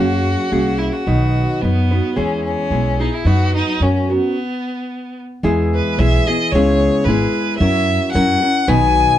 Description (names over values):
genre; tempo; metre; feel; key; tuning
mexican folk, mariachi; 110 BPM; 2/4; straight; B major, E major from 5.4 s; A4 = 441 Hz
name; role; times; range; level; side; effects
rich violin; melody; 0.0-9.2 s; B3 to G#5; -20 LUFS; left 2 dB; none
nylon-string guitar; accompaniment; 0.0-9.2 s; B2 to B4; -18 LUFS; equal; none
upright bass; bass; 0.0-9.0 s; G#1 to F#2; -18 LUFS; equal; none
room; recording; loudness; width
light reverb; dark, warm production; -14 LUFS; side -12 dB against mid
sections
0.0-5.4 A section; 5.4-9.2 B section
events
stop 4.4-5.4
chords
0.0 F#add9; 1.1 B; 2.2 E; 3.3 B/F#; 3.8 F#; 4.4 N.C.; 5.4 E; 6.5 C#m7; 7.6 F#7; 8.7 B